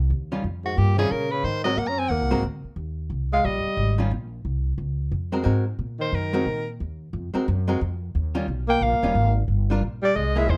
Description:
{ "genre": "jazz, small-group swing and bop", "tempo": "179 BPM", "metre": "4/4", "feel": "swing 63% on 8ths", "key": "unclear", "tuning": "A4 = 440 Hz", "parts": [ { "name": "upright bass", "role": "bass", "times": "0.0-10.6 s", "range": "Eb1 to Bb2", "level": "-27 LUFS", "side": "equal", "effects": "none" }, { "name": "archtop guitar, miked and amplified", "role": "accompaniment", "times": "0.3-10.6 s", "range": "Eb3 to Bb4", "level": "-29 LUFS", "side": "equal", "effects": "none" }, { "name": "warm tenor saxophone", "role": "second line", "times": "0.6-10.6 s", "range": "Ab2 to Db4", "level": "-30 LUFS", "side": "equal", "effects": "none" }, { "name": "bright soprano saxophone", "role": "melody", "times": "0.7-4.0, 6.0-6.7, 8.7-10.6 s", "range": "Gb4 to Bb5", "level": "-28 LUFS", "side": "equal", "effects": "none" } ], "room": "light reverb", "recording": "dark, warm production", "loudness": "-24 LUFS", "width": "mono", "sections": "0.1-10.6 A section", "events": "none", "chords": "0.1 Eb9; 1.4 Ab9; 2.8 Eb9; 5.5 Ab9; 8.1 Eb9; 9.5 Gm7" }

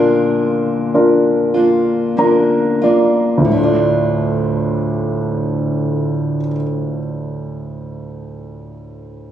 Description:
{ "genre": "pop", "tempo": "44-52 BPM", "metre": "4/4", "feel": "straight", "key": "D minor", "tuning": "A4 = 440 Hz", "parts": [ { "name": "warm baby grand piano", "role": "accompaniment", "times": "0.0-9.3 s", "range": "D2 to Bb5", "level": "-16 LUFS", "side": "left 1 dB", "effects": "none" }, { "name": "fingerpicked steel-string acoustic guitar", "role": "arpeggios", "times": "0.0-7.1 s", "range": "D3 to F4", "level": "-19 LUFS", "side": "right 1 dB", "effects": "none" } ], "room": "light reverb", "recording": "recorded on a phone in the room, club reverb, compression", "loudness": "-14 LUFS", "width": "side -10 dB against mid", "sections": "0.0-3.5 A section; 3.5-9.0 B section", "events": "slowing down 0.0-3.5; grand piano fill 1.5-3.5", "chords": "0.0 Bb; 3.5 Dm" }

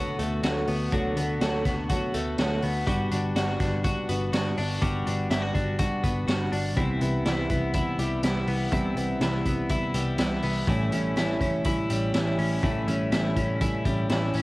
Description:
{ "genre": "jangly indie pop", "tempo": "123 BPM", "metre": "4/4", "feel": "straight", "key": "D major", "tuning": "A4 = 441 Hz", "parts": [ { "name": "fingerpicked steel-string acoustic guitar", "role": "accompaniment", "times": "0.0-14.4 s", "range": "A2 to A4", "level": "-30 LUFS", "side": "right 2 dB", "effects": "cassette tape" }, { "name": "twelve-string electric guitar", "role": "arpeggios", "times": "0.0-14.4 s", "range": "A2 to F#4", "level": "-28 LUFS", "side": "left 2 dB", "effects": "cassette tape" }, { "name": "vintage muted picked electric bass", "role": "bass", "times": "0.2-14.4 s", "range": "G1 to D2", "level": "-30 LUFS", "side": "equal", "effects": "none" }, { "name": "raw garage drum kit", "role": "drums", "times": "0.2-14.4 s", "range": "hi-hat, kick drum, snare drum", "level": "-30 LUFS", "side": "equal", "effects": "cassette tape" } ], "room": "light reverb", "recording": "home recording on cassette", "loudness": "-24 LUFS", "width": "side -20 dB against mid", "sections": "0.0-14.4 A section", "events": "none", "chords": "0.0 D6; 2.9 Gmaj7; 6.8 Cmaj7; 10.7 A7" }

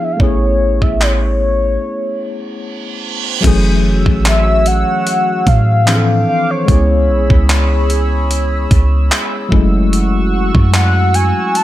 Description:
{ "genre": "contemporary R&B", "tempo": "74 BPM", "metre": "4/4", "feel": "swing 54% on 16ths", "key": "F# minor", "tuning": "A4 = 437 Hz", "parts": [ { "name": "mellow horn-like synth lead", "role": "melody", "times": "0.0-11.6 s", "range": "C#5 to A5", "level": "-18 LUFS", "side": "left 1 dB", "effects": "chorus, ping-pong delay" }, { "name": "tine electric piano", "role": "accompaniment", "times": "0.0-11.6 s", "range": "E3 to A4", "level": "-18 LUFS", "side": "left 3 dB", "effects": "medium stereo tremolo" }, { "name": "clean 808-style bass", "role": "bass", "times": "0.2-11.3 s", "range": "F#1 to A2", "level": "-14 LUFS", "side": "equal", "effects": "none" }, { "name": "dusty soul sampler-style drum kit", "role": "drums", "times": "0.2-11.6 s", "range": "crash cymbal, handclaps, hi-hat, kick drum", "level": "-15 LUFS", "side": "equal", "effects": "none" }, { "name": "reverse cymbal", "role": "sound effects", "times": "2.6-3.4 s", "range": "none", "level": "-23 LUFS", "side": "right 9 dB", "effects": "none" }, { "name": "chorused pulse-width pad", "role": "sustained chords", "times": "3.8-11.6 s", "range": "F#4 to E6", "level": "-22 LUFS", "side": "right 1 dB", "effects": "none" } ], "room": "little or no reverb", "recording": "none", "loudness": "-11 LUFS", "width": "side -14 dB against mid", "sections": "0.0-3.4 A section; 3.4-11.6 B section", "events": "break 1.8-3.4; reverse cymbal 2.6-3.4", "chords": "0.2 Amaj7; 3.4 F#m7; 5.9 Dm7; 6.7 C#m7; 9.5 F#m7" }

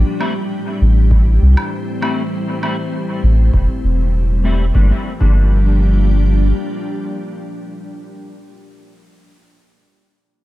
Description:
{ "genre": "ambient dub", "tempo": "99 BPM", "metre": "4/4", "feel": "straight", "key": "G dorian", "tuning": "A4 = 438 Hz", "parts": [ { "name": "soft additive organ-like pad", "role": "sustained chords", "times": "0.0-7.9 s", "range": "A2 to G4", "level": "-23 LUFS", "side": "left 1 dB", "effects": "ensemble chorus, built-in reverb" }, { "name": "soft dub sub bass", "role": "bass", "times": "0.0-6.5 s", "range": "E1 to C2", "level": "-12 LUFS", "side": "equal", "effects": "none" }, { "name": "semi-hollow electric guitar", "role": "stabs", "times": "0.2-8.5 s", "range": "F3 to E4", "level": "-26 LUFS", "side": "left 3 dB", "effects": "ensemble chorus, low-pass filter, dub echo" }, { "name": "woodblock", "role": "drums", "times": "0.2-2.8 s", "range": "none", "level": "-27 LUFS", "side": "right 1 dB", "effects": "overdrive, dub echo" }, { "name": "electronic kick drum", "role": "drums", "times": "1.1-5.4 s", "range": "none", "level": "-18 LUFS", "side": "equal", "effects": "none" } ], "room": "light reverb", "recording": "none", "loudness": "-13 LUFS", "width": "side -16 dB against mid", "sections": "0.0-4.7 A section; 4.7-7.2 B section", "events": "none", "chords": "0.0 Am7; 4.7 Gm7" }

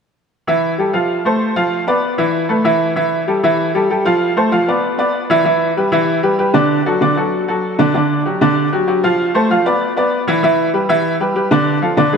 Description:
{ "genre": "latin", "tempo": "193 BPM", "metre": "4/4", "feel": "straight", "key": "unclear", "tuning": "A4 = 440 Hz", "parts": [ { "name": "bright upright piano", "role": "solo", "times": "0.5-12.2 s", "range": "D3 to F5", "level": "-13 LUFS", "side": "equal", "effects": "none" } ], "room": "wet plate reverb, RT60 3.3 s", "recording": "heard from further back in the room", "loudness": "-13 LUFS", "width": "side -6 dB against mid", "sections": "0.5-3.0 A section; 3.0-12.2 B section", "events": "none", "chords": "0.5 A5; 1.1 F; 1.7 Dm69; 2.3 Esus4; 3.0 A5; 4.2 Dm7; 4.8 Bmadd11; 5.5 G6; 6.7 D; 7.9 G5; 9.2 Dm7; 9.8 Bmadd11; 10.4 G6; 11.7 Bm7b5 (rootless)" }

